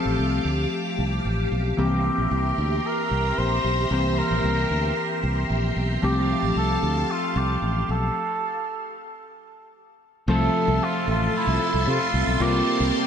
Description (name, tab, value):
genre	pop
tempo	113 BPM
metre	4/4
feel	straight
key	unclear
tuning	A4 = 441 Hz
part	mellow cor anglais	melody	0.0-13.1 s	E4 to C5	-27 LUFS	equal	ping-pong delay
part	glassy digital keys	accompaniment	0.0-13.1 s	E3 to E5	-27 LUFS	left 1 dB	chorus
part	phased string machine	sustained chords	0.0-13.1 s	G4 to D6	-29 LUFS	equal	ensemble chorus, phaser
part	fretless electric bass	bass	0.1-12.9 s	A1 to C3	-24 LUFS	equal	none
part	crunchy overdriven guitar	accompaniment	10.3-13.1 s	F2 to C4	-32 LUFS	right 2 dB	ensemble chorus
room	wet lush hall reverb, RT60 2.7 s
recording	dreamy mix soaked in reverb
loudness	-21 LUFS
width	side -8 dB against mid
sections	0.0-10.3 A section; 10.3-13.1 B section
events	stop 8.2-10.3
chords	0.0 Fadd9; 1.8 C7; 6.0 Fadd9; 10.3 Fmaj7; 12.4 C7sus4